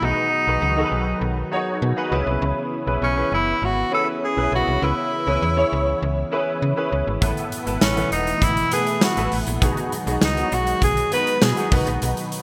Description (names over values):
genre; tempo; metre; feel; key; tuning
1980s-style pop; 100 BPM; 4/4; straight; unclear; A4 = 440 Hz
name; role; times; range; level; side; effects
bright tenor saxophone; melody; 0.0-11.7 s; C#4 to B4; -25 LUFS; equal; none
clear concert grand piano; accompaniment; 0.0-12.4 s; A2 to C#5; -27 LUFS; equal; ensemble chorus
phased analog pad; sustained chords; 0.0-12.4 s; B2 to F#4; -32 LUFS; equal; phaser, chorus
slap-like FM bass; bass; 0.0-12.1 s; E1 to C#3; -27 LUFS; equal; none
big rock drum kit; drums; 7.2-12.4 s; hi-hat, kick drum, snare drum; -25 LUFS; equal; none
room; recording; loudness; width
moderate lush hall reverb, RT60 2.1 s; bright 1980s-style digital production; -21 LUFS; mono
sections
0.0-12.4 A section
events
none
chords
0.0 G#m7/B; 2.1 C#m7; 7.2 Asus2; 9.6 G#m7/B; 11.7 B